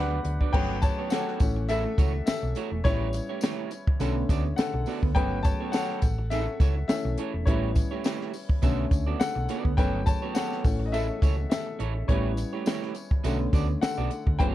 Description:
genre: lush 1970s-style soul.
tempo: 104 BPM.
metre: 4/4.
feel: swing 54% on 16ths.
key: unclear.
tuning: A4 = 441 Hz.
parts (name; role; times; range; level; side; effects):
warm grand piano; accompaniment; 0.0-14.5 s; D3 to A5; -30 LUFS; left 4 dB; none.
electric guitar through a small old amp; riff; 0.0-14.5 s; A3 to E5; -34 LUFS; right 10 dB; none.
hollow-body short-scale fingered electric bass; bass; 0.0-14.5 s; E1 to D2; -29 LUFS; equal; none.
compact cocktail drum kit; drums; 0.2-14.5 s; crash cymbal, hi-hat, kick drum, snare drum; -25 LUFS; equal; none.
tambourine; percussion; 0.8-14.3 s; none; -47 LUFS; left 4 dB; none.
room: little or no reverb.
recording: dark, warm production.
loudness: -24 LUFS.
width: side -14 dB against mid.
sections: 0.5-14.5 A section.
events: grand piano solo 0.5-14.5.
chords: 0.0 D6; 0.5 Gmaj9#11; 1.4 F#m7/A; 2.9 A7; 4.0 Bm7; 5.2 Gmaj9#11; 6.0 A6; 7.5 A7; 8.6 Bm7; 9.8 Gmaj9#11; 10.6 A6; 12.1 A7; 13.2 Bm7.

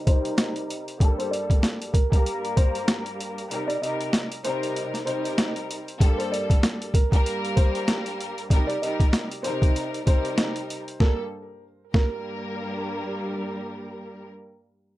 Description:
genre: hip hop, boom-bap hip-hop.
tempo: 96 BPM.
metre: 4/4.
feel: swing 58% on 16ths.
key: G minor.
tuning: A4 = 440 Hz.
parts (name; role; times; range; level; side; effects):
dark upright piano; melody; 0.0-12.8 s; Bb4 to Eb5; -31 LUFS; left 1 dB; high-pass filter, low-pass filter, ping-pong delay.
warm studio string section; accompaniment; 0.0-14.3 s; G2 to Bb4; -30 LUFS; equal; cassette tape, high-pass filter, low-pass filter.
boom bap sampler-style drum kit; drums; 0.1-12.1 s; hi-hat, kick drum, snare drum; -22 LUFS; equal; overdrive.
room: little or no reverb.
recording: none.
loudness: -22 LUFS.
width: side -16 dB against mid.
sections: 0.0-6.0 A section; 6.0-11.0 B section; 11.0-13.5 C section.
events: filter sweep 0.0-6.0; break 3.5-6.0.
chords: 0.0 Cm7; 1.0 Gmadd9; 3.5 Cm7; 6.0 Gmadd9; 8.5 Cm7; 11.0 Gm.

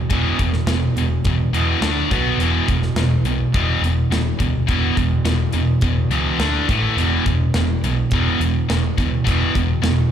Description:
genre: hard rock.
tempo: 105 BPM.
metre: 4/4.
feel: straight.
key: unclear.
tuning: A4 = 440 Hz.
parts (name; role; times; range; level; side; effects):
scooped high-gain guitar; riff; 0.0-10.1 s; E2 to D4; -22 LUFS; left 8 dB; distortion, slapback echo.
sludgy distorted guitar; riff; 0.0-10.1 s; E2 to D4; -22 LUFS; right 6 dB; overdrive.
overdriven picked electric bass; bass; 0.1-10.0 s; E1 to E2; -22 LUFS; equal; none.
tight metal drum kit; drums; 0.1-10.0 s; hi-hat, kick drum, snare drum; -24 LUFS; equal; none.
room: little or no reverb.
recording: live gig heard through the venue's PA, club reverb.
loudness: -16 LUFS.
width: side -9 dB against mid.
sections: 0.0-10.1 A section.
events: none.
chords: 0.0 E5; 1.8 D5; 2.1 B5; 2.4 E5; 6.4 D5; 6.7 A5; 7.0 E5.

